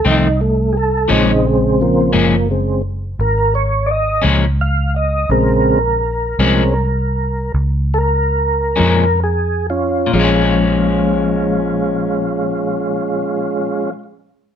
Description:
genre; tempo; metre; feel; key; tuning
slow blues; 42-57 BPM (dotted quarters); 12/8; straight; Bb minor; A4 = 440 Hz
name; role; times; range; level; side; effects
electric guitar at the edge of break-up; accompaniment; 0.0-14.0 s; F2 to Db4; -17 LUFS; left 4 dB; harmonic tremolo
tonewheel organ; sustained chords; 0.0-13.9 s; Db3 to F5; -16 LUFS; right 1 dB; slow rotary speaker, overdrive, chorus vibrato
vintage muted fingered electric bass; bass; 0.0-13.9 s; Gb1 to F2; -18 LUFS; equal; none
room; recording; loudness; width
light reverb; none; -13 LUFS; side -8 dB against mid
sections
0.0-10.1 A section; 10.1-14.6 B section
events
tonewheel organ solo 0.0-10.1; slowing down 3.9-10.1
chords
0.0 F7; 1.1 Bbm7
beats
0.06 | 1.10 2.15 3.19 4.24 | 5.30 6.40 7.55 8.79 | 10.13 11.54 12.96

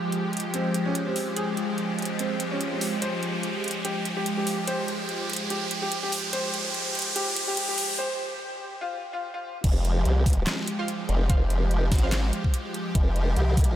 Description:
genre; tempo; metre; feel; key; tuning
heavy wobble dubstep; 145 BPM; 4/4; swing 55% on 16ths, half-time; F minor; A4 = 439 Hz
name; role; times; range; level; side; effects
supersaw pad; sustained chords; 0.0-13.8 s; F3 to G4; -30 LUFS; equal; phaser, sidechain pumping
riser; sound effects; 0.0-8.0 s; none; -32 LUFS; right 1 dB; none
dubstep drum kit; drums; 0.1-13.7 s; crash cymbal, handclaps, hi-hat, snare drum; -32 LUFS; right 1 dB; none
bright baby grand piano; melody; 0.5-9.5 s; C4 to C5; -32 LUFS; equal; low-pass filter, tape echo
formant-sweep wobble bass; bass; 9.6-13.8 s; F1 to C2; -23 LUFS; equal; chorus, overdrive
electronic kick drum; drums; 9.6-13.7 s; none; -22 LUFS; equal; none
orchestra-hit-like synth stab; stabs; 10.8-12.1 s; F4 to F5; -37 LUFS; right 3 dB; built-in reverb, tape echo
room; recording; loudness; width
moderate huge ambient reverb, RT60 8.1 s; dreamy mix soaked in reverb, high-pass filter; -24 LUFS; side -12 dB against mid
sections
0.0-9.6 A section; 9.6-13.8 B section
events
build-up 0.0-9.6; riser 0.0-8.0; filter sweep 0.0-9.6; break 8.0-9.6; drop 9.6-13.8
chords
0.0 Fmadd9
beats
0.12 0.54 0.95 | 1.36 1.78 2.19 2.61 | 3.02 3.43 3.85 4.26 | 4.67 5.09 5.50 5.92 | 6.33 6.74 7.16 7.57 | 7.99 8.40 8.81 9.23 | 9.64 10.05 10.47 10.88 | 11.30 11.71 12.12 12.54 | 12.95 13.37

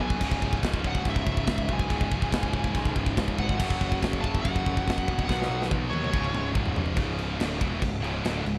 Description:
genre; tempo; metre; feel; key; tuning
heavy metal; 142 BPM; 4/4; straight; C# minor; A4 = 440 Hz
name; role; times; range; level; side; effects
smooth overdriven lead guitar; melody; 0.0-6.5 s; C#5 to A5; -36 LUFS; equal; delay
crunchy overdriven guitar; riff; 0.0-8.6 s; C#2 to B3; -39 LUFS; equal; none
heavy high-gain guitar; riff; 0.0-8.6 s; C#2 to B3; -37 LUFS; equal; distortion
heavy high-gain guitar; riff; 0.0-8.6 s; C#2 to B3; -38 LUFS; equal; distortion
fuzz picked electric bass; bass; 0.0-8.6 s; C#1 to D#2; -34 LUFS; equal; overdrive
tight metal drum kit; drums; 0.0-8.6 s; china cymbal, crash cymbal, kick drum, snare drum, toms; -31 LUFS; equal; none
room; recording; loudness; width
little or no reverb; dark, warm production; -27 LUFS; mono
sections
0.0-7.0 A section; 7.0-8.6 B section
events
drum fill 5.3-7.0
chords
0.2 C#5; 3.6 F#5; 5.3 B; 6.1 C#5; 7.0 C#m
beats
| 0.21 0.63 1.05 1.47 | 1.90 2.32 2.74 3.17 | 3.59 4.01 4.43 4.86 | 5.28 5.70 6.12 6.55 | 6.97 7.39 7.82 8.24

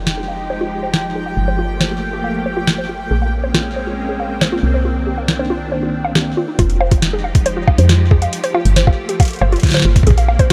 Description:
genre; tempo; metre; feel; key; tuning
IDM; 138 BPM; 4/4; straight; unclear; A4 = 438 Hz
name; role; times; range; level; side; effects
soft string machine; sustained chords; 0.0-10.5 s; Eb3 to G4; -26 LUFS; equal; ensemble chorus
warbly dusty pluck; arpeggios; 0.0-10.5 s; Eb4 to F5; -24 LUFS; equal; chorus, digital delay
woody FM bass; bass; 0.0-10.5 s; F1 to F2; -20 LUFS; equal; none
bubbling stepped-filter texture; texture; 0.0-6.6 s; G5; -31 LUFS; equal; chorus, built-in reverb, sidechain pumping
booming analog drum machine; drums; 0.1-10.5 s; bongos, hi-hat, snare drum; -20 LUFS; equal; none
electronic kick drum; drums; 6.6-10.5 s; none; -14 LUFS; equal; none
room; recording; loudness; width
little or no reverb; none; -16 LUFS; mono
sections
0.0-6.6 A section; 6.6-10.5 B section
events
filter sweep on synth arpeggio sound 0.0-6.6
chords
0.0 Fm9; 1.4 Gm9; 3.1 Bbm9; 4.6 Cm9; 6.6 Fm9; 8.3 Gm9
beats
0.07 0.50 0.94 | 1.37 1.81 2.24 2.68 | 3.11 3.54 3.98 4.42 | 4.85 5.28 5.72 6.15 | 6.59 7.02 7.46 7.89 | 8.33 8.76 9.20 9.63 | 10.07 10.50

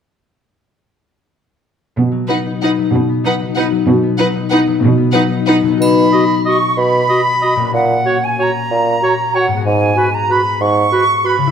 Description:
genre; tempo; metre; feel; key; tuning
classical, orchestral ballroom waltz; 187 BPM; 3/4; uneven beats, rubato; B major; A4 = 440 Hz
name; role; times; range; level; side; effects
concert harp; arpeggios; 2.0-11.5 s; G#2 to G#4; -17 LUFS; left 7 dB; none
warm studio cello section; bass; 2.0-5.1 s; B2; -15 LUFS; right 4 dB; none
rich studio violin section; melody; 2.3-5.6 s; F#5; -23 LUFS; left 2 dB; none
rich studio violin section; second line; 2.3-5.6 s; B4; -22 LUFS; left 1 dB; none
rich studio viola section; accompaniment; 2.3-5.6 s; D#4; -19 LUFS; right 4 dB; none
bright small flute group; second line; 5.8-11.5 s; F#5 to C#6; -16 LUFS; right 2 dB; none
warm bassoon; accompaniment; 5.8-10.9 s; G#2 to B2; -18 LUFS; right 3 dB; none
triangle; percussion; 5.8-6.4 s; none; -31 LUFS; right 2 dB; none
mellow clarinet; second line; 6.1-11.4 s; F#4; -20 LUFS; equal; none
warm oboe; second line; 6.1-11.4 s; B4 to D#5; -21 LUFS; right 2 dB; none
room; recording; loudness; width
moderate scoring stage reverb, RT60 1.6 s; none; -12 LUFS; side -7 dB against mid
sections
2.0-5.8 A section; 5.8-11.5 B section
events
none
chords
2.0 B; 7.7 F#/A#; 9.7 G#m7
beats
| 1.96 2.29 2.62 | 2.94 3.25 3.57 | 3.88 4.18 4.51 | 4.82 5.14 5.48 | 5.81 6.13 6.46 | 6.78 7.10 7.43 | 7.74 8.06 8.39 | 8.71 9.02 9.35 | 9.66 9.98 10.31 | 10.62 10.93 11.25

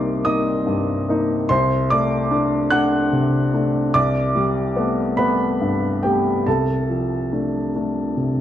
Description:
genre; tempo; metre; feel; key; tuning
neoclassical minimalist piano; 48 BPM (dotted quarters); 6/8; rubato; unclear; A4 = 441 Hz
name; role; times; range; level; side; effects
warm upright piano; solo; 0.0-8.4 s; C2 to F#6; -17 LUFS; equal; none
room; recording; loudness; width
light reverb; dark, warm production; -17 LUFS; side -11 dB against mid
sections
0.0-8.4 A section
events
none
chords
0.0 Cm7; 1.5 D7/C; 3.9 Gadd9/C; 6.5 Dm7/C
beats
0.26 | 1.50 2.71 | 3.94 5.17 | 6.46 7.74

